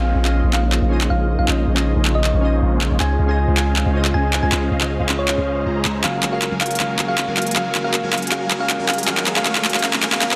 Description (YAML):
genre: future bass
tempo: 158 BPM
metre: 4/4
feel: half-time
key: Db major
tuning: A4 = 440 Hz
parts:
  - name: thumb-piano-like synth pluck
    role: melody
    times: 0.0-10.4 s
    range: Db5 to Ab5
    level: -28 LUFS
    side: equal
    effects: chorus, dub echo
  - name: glassy digital keys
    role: accompaniment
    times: 0.0-10.4 s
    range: Db4 to C6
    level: -29 LUFS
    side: equal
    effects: chorus
  - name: airy breathy pad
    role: sustained chords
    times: 0.0-10.4 s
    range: Db3 to Gb4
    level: -31 LUFS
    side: equal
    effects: chorus
  - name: supersaw chords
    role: riff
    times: 0.0-10.4 s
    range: Gb3 to Bb5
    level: -29 LUFS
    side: equal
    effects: phaser, low-pass filter
  - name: long sustained 808-style bass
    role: bass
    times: 0.0-10.4 s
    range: Gb1 to Db2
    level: -23 LUFS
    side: equal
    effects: none
  - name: dubstep drum kit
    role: drums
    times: 0.3-10.4 s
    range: handclaps, hi-hat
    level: -23 LUFS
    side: equal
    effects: none
  - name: riser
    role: sound effects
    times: 7.8-10.4 s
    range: none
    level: -34 LUFS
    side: equal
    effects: none
room: moderate digital room reverb, RT60 1.1 s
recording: dense, heavily limited modern master, high-pass filter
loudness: -19 LUFS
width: mono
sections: 0.0-10.4 A section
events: build-up 0.0-10.4; drum fill 0.0-10.4; filter sweep on supersaw synth 0.0-10.4; filter sweep 0.0-10.4; riser 7.8-10.4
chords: 0.0 Bbm11; 3.0 Dbmaj7; 6.0 Gbmaj9; 9.1 Ab9sus4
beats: 0.34 0.72 1.10 | 1.48 1.86 2.24 2.62 | 3.00 3.38 3.76 4.14 | 4.52 4.90 5.28 5.66 | 6.04 6.42 6.80 7.18 | 7.56 7.94 8.32 8.70 | 9.08 9.46 9.84 10.22